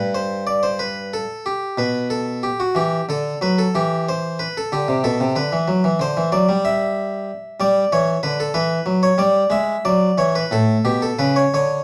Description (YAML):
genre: classical, baroque-style suite movement for harpsichord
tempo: 62 BPM (dotted quarters)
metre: 12/8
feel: rubato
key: unclear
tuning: A4 = 440 Hz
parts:
  - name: harpsichord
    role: solo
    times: 0.0-11.8 s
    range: G2 to E5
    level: -20 LUFS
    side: equal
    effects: none
room: light reverb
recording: dark, warm production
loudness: -20 LUFS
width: mono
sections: 0.0-11.8 A section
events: none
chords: 0.0 G; 3.7 C; 7.6 Em; 9.5 E; 10.5 A